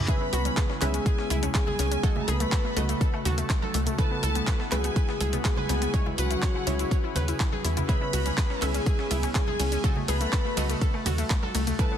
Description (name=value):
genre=progressive house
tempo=123 BPM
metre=4/4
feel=straight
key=unclear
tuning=A4 = 438 Hz
part: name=airy breathy pad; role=sustained chords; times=0.0-12.0 s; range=C#3 to B4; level=-36 LUFS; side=equal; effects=chorus, vintage 12-bit sampler grit, sidechain pumping
part: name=glassy wavetable pluck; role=arpeggios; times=0.0-12.0 s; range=A3 to C#5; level=-34 LUFS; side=left 3 dB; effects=chorus, sidechain pumping, ping-pong delay
part: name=wide unison pluck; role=stabs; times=0.0-12.0 s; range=C#3 to E5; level=-35 LUFS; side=right 2 dB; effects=analog chorus, sidechain pumping, ping-pong delay
part: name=soft octave-layered synth lead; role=melody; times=0.1-12.0 s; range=F#4 to B4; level=-33 LUFS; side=left 1 dB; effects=chorus, ping-pong delay
part: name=clear studio violin section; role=second line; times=0.1-12.0 s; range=F#5 to B5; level=-36 LUFS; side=equal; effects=sidechain pumping, ping-pong delay
part: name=breakbeat sampler-style drum kit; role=drums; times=0.1-11.9 s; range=hi-hat, snare drum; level=-43 LUFS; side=right 2 dB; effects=none
part: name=electronic kick drum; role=drums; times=0.1-11.9 s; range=none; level=-25 LUFS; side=equal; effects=none
part: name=pop drum kit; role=drums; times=0.1-11.9 s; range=cabasa, handclaps, hi-hat, ride cymbal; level=-34 LUFS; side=equal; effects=overdrive
part: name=congas and woodblock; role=percussion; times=0.1-11.9 s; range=none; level=-38 LUFS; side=right 3 dB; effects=sidechain pumping on perc
part: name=tight sequencer bass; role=bass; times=0.3-11.7 s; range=C#2 to E2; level=-28 LUFS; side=equal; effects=sidechain pumping
room=digital ambience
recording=dense, heavily limited modern master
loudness=-24 LUFS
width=side -9 dB against mid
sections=0.0-12.0 A section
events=none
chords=0.1 C#m7; 2.0 D#dim/C#; 4.0 B7sus4/C#; 5.9 E6/C#; 7.9 C#m7; 9.8 D#dim/C#